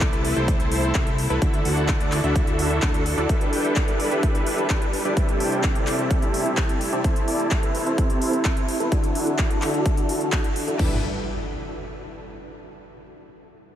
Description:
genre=EDM, festival progressive house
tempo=128 BPM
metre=4/4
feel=straight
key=G major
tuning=A4 = 441 Hz
part: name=warm studio string section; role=sustained chords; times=0.0-11.0 s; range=C3 to B4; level=-28 LUFS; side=right 1 dB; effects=sidechain pumping, low-pass filter
part: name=dense compressed supersaw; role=riff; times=0.0-11.0 s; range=C4 to A5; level=-26 LUFS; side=equal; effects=sidechain pumping, low-pass filter, analog delay
part: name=fat analog bass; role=bass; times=0.0-3.3, 10.8-11.0 s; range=G1 to D2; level=-26 LUFS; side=equal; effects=sidechain pumping
part: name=big-room dance drum kit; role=drums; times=0.0-10.9 s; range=crash cymbal, handclaps, hi-hat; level=-30 LUFS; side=left 1 dB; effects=none
part: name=electronic kick drum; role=drums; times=0.0-10.9 s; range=none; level=-22 LUFS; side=equal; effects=overdrive
part: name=impact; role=sound effects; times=10.8-12.7 s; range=none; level=-34 LUFS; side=equal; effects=none
room=moderate huge ambient reverb, RT60 6.9 s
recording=dreamy mix soaked in reverb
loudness=-20 LUFS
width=side -10 dB against mid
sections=0.0-10.8 A section; 10.8-12.7 B section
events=filter sweep on supersaw synth 0.0-10.8; filter sweep on string section 0.0-10.8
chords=0.0 Am/C; 1.4 Dadd9; 3.3 G6; 5.2 C6; 7.0 Am/C; 8.9 Dadd9; 10.8 G6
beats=0.01 0.48 0.95 | 1.42 1.89 2.36 2.83 | 3.29 3.76 4.23 4.70 | 5.17 5.64 6.11 6.58 | 7.04 7.51 7.98 8.45 | 8.92 9.39 9.86 10.32 | 10.79 11.26 11.73 12.20

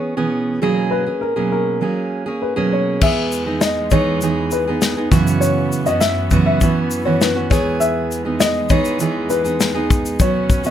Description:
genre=acoustic pop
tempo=100 BPM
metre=4/4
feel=straight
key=unclear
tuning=A4 = 439 Hz
part: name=dark upright piano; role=melody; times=0.0-10.7 s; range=G#4 to E5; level=-21 LUFS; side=left 3 dB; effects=none
part: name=fingerpicked steel-string acoustic guitar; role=accompaniment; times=0.0-10.7 s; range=F#2 to G#4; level=-18 LUFS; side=right 3 dB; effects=none
part: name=warm studio string section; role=sustained chords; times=3.0-10.7 s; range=D#2 to C#4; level=-27 LUFS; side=right 1 dB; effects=none
part: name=natural country drum kit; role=drums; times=3.0-10.7 s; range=crash cymbal, kick drum, shaker, snare drum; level=-18 LUFS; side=left 2 dB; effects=none
room=light reverb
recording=close, detailed microphones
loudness=-15 LUFS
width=side -10 dB against mid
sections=0.0-3.0 A section; 3.0-10.7 B section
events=none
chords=0.0 C#m7/B; 0.6 F#add9/B; 3.0 Emaj7; 5.1 F#7sus4; 7.5 Emaj7; 10.2 Badd9/D#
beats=0.02 | 0.62 1.22 1.82 2.42 | 3.02 3.62 4.22 4.82 | 5.42 6.01 6.61 7.21 | 7.81 8.41 9.01 9.60 | 10.20

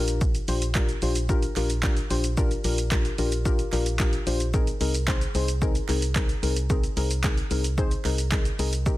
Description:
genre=dance-pop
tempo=111 BPM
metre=4/4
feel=straight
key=unclear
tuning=A4 = 441 Hz
part: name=deep mellow chord stab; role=accompaniment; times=0.0-9.0 s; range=C4 to C5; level=-29 LUFS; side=left 3 dB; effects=chorus, sidechain pumping
part: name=organ-like FM bass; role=bass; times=0.0-9.0 s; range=Bb1 to C2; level=-27 LUFS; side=equal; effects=sidechain pumping
part: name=punchy analog drum machine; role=drums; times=0.1-9.0 s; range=handclaps, hi-hat, kick drum, shaker, snare drum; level=-26 LUFS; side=equal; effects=none
part: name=group handclap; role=percussion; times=0.8-8.4 s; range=none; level=-40 LUFS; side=right 8 dB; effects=none
room=little or no reverb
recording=dense, heavily limited modern master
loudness=-22 LUFS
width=side -16 dB against mid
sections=0.0-9.0 A section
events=none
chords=0.0 Gm7/Bb; 4.5 Abadd9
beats=| 0.21 0.75 1.29 1.83 | 2.38 2.92 3.46 4.00 | 4.54 5.08 5.62 6.16 | 6.70 7.24 7.78 8.32 | 8.86

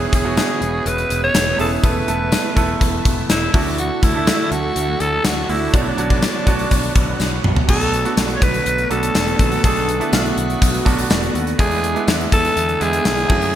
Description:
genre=1980s-style pop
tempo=123 BPM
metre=4/4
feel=straight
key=unclear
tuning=A4 = 440 Hz
part: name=raspy alto saxophone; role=melody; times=0.0-13.6 s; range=D4 to C#5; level=-21 LUFS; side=equal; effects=none
part: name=clear concert grand piano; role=accompaniment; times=0.0-13.6 s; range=G#3 to C#5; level=-23 LUFS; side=right 4 dB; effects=none
part: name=shimmering ambient pad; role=sustained chords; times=0.0-13.6 s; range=B2 to C#5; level=-27 LUFS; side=left 1 dB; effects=chorus, built-in reverb
part: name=modern bright picked electric bass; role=bass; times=0.0-13.6 s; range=E1 to F#2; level=-24 LUFS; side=equal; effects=none
part: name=gated 80s drum kit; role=drums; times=0.1-13.5 s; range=crash cymbal, hi-hat, kick drum, snare drum, tambourine, toms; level=-18 LUFS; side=left 1 dB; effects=gated reverb
part: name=tambourine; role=percussion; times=0.4-13.2 s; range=none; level=-35 LUFS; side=left 8 dB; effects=none
room=moderate plate reverb, RT60 2.2 s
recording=bright 1980s-style digital production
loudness=-15 LUFS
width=side -11 dB against mid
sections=0.0-7.7 A section; 7.7-13.6 B section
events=drum fill 7.2-7.7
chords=0.0 E6; 1.8 Asus2/E; 3.5 Dadd9; 5.7 Bmadd9; 7.7 Bm7; 11.6 E7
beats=0.37 0.86 1.35 | 1.83 2.32 2.81 3.30 | 3.79 4.27 4.76 5.25 | 5.74 6.22 6.71 7.20 | 7.69 8.18 8.66 9.15 | 9.64 10.13 10.62 11.10 | 11.59 12.08 12.57 13.05 | 13.54

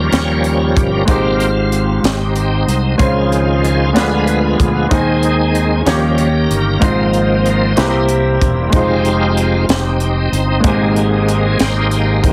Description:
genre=slow gospel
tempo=63 BPM (dotted quarters)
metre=6/8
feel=straight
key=Ab major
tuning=A4 = 440 Hz
part: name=bright baby grand piano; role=accompaniment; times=0.0-12.3 s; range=Ab2 to Db5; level=-19 LUFS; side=equal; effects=none
part: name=bright tonewheel organ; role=sustained chords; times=0.0-12.3 s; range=Eb3 to Eb5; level=-20 LUFS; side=equal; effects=slow rotary speaker, chorus vibrato
part: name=fingered electric bass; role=bass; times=0.0-12.3 s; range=E1 to Eb2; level=-19 LUFS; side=equal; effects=none
part: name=crisp fusion drum kit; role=drums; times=0.1-12.3 s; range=hi-hat, kick drum, snare drum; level=-20 LUFS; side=equal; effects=none
room=light reverb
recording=heavily compressed radio sound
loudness=-14 LUFS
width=mono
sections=0.0-12.3 A section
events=tonewheel organ solo 0.0-12.3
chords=0.0 Eb7; 1.1 Abmaj7; 3.0 Dbmaj7; 3.9 Ddim7; 4.9 Ab/Eb; 5.9 Eb7; 6.8 Ab6; 7.8 C7; 8.7 Fm7; 10.6 Abmaj7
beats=0.12 | 1.08 2.04 | 2.99 3.95 | 4.90 5.86 | 6.81 7.77 | 8.73 9.68 | 10.64 11.60

